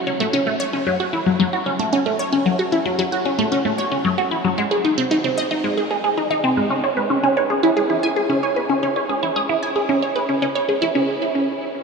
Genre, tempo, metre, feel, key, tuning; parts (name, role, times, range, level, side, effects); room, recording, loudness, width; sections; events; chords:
ambient; 113 BPM; 4/4; straight; F# dorian, C# minor from 6.7 s; A4 = 441 Hz
resonant blip pluck; solo; 0.1-11.2 s; F#3 to G#5; -17 LUFS; equal; phaser, tape echo
wet huge ambient reverb, RT60 8.4 s; dreamy mix soaked in reverb, small room ambience; -17 LUFS; side -4 dB against mid
0.0-6.7 A section; 6.7-11.0 B section